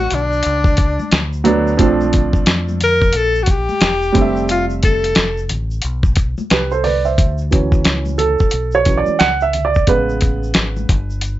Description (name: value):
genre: hip hop, jazz-hop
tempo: 89 BPM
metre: 4/4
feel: swing 61% on 16ths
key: D major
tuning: A4 = 442 Hz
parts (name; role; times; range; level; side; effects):
- breathy tenor saxophone; melody; 0.0-5.5 s; D4 to Bb4; -17 LUFS; left 2 dB; slapback echo
- dark baby grand piano; accompaniment; 0.0-11.4 s; C#3 to F#5; -16 LUFS; right 4 dB; none
- deep dub fingered electric bass; bass; 0.0-11.4 s; E1 to F2; -21 LUFS; equal; none
- dusty soul sampler-style drum kit; drums; 0.1-11.4 s; hi-hat, kick drum, snare drum; -15 LUFS; equal; none
- congas and egg shaker; percussion; 0.1-11.4 s; none; -31 LUFS; left 3 dB; none
room: light reverb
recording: nothing above 7.8 kHz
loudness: -13 LUFS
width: side -14 dB against mid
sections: 0.0-7.2 A section; 7.2-11.4 B section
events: grand piano solo 7.2-11.4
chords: 0.0 Gmaj9 (rootless); 1.8 Bbmaj9; 4.2 Fmaj9; 7.2 Dmaj9; 9.9 Amaj9